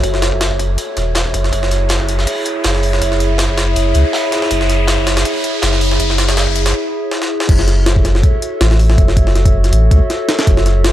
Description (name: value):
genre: drum and bass, jungle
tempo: 161 BPM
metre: 4/4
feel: swing 54% on 16ths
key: F# minor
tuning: A4 = 439 Hz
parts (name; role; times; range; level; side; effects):
- warbly tape-like pad; sustained chords; 0.0-10.9 s; E4 to E5; -19 LUFS; equal; chorus, built-in reverb, vintage 12-bit sampler grit
- soft dub sub bass; bass; 0.0-10.9 s; E1 to C#2; -14 LUFS; equal; tube saturation
- crunchy breakbeat drum kit; drums; 0.0-6.7 s; hi-hat, snare drum; -25 LUFS; equal; high-pass filter on hats, high-pass filter on snare, high-pass filter on room
- jungle sampler-style drum kit; drums; 0.0-10.9 s; crash cymbal, hi-hat, kick drum, snare drum; -16 LUFS; equal; high-pass filter on hats, high-pass filter on kick, high-pass filter on snare, high-pass filter on cymbals
- riser; sound effects; 0.0-6.7 s; none; -24 LUFS; equal; none
room: little or no reverb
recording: dry, gritty hardware recording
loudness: -12 LUFS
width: side -13 dB against mid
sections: 0.0-7.5 A section; 7.5-10.9 B section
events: build-up 0.0-7.5; riser 0.0-6.7; break 6.7-7.5; drum fill 7.1-7.5; drop 7.5-10.9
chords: 0.0 F#m7; 1.5 C#m/F#; 7.5 F#m7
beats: | 0.04 0.41 0.78 1.15 | 1.53 1.90 2.27 2.64 | 3.02 3.39 3.76 4.13 | 4.51 4.88 5.25 5.62 | 6.00 6.37 6.74 7.12 | 7.49 7.86 8.23 8.61 | 8.98 9.35 9.72 10.10 | 10.47 10.84